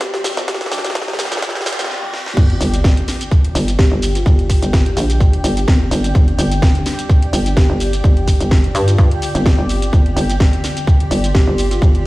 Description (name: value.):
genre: bass house.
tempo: 127 BPM.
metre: 4/4.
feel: swing 55% on 16ths.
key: unclear.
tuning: A4 = 439 Hz.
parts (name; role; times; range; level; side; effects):
buzzing kalimba; melody; 0.0-11.9 s; C4 to G4; -26 LUFS; left 1 dB; tape echo.
sweeping resonant pad; sustained chords; 0.0-12.1 s; D3 to D4; -29 LUFS; equal; none.
electronic kick drum; drums; 0.0-11.9 s; none; -12 LUFS; equal; high-pass filter on kick.
garage drum kit; drums; 0.0-12.0 s; crash cymbal, hi-hat, shaker, snare drum, toms; -22 LUFS; equal; none.
riser and sub drop; sound effects; 0.0-4.3 s; none; -26 LUFS; equal; none.
granular cloud pad; texture; 0.0-12.1 s; G4 to C6; -27 LUFS; equal; built-in reverb, sidechain pumping.
hollow knocking FM bass; bass; 0.4-12.1 s; F1 to G2; -18 LUFS; equal; sidechain pumping, high-pass filter.
percussive organ stab; stabs; 0.7-0.8 s; G3 to G4; -31 LUFS; equal; chorus, phaser, cassette tape, sidechain pumping, tape echo.
room: light reverb, digital ambience.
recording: played on a big sound system in a bare room, stone room reverb, high-pass filter.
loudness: -13 LUFS.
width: side -19 dB against mid.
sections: 0.0-2.4 A section; 2.4-12.1 B section.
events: build-up 0.0-2.4; drum fill 0.0-1.9, 1.9-2.4; riser 0.0-2.4; stop 1.9-2.4; drop 2.4-12.1; impact 2.4-4.3.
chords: 0.0 G5.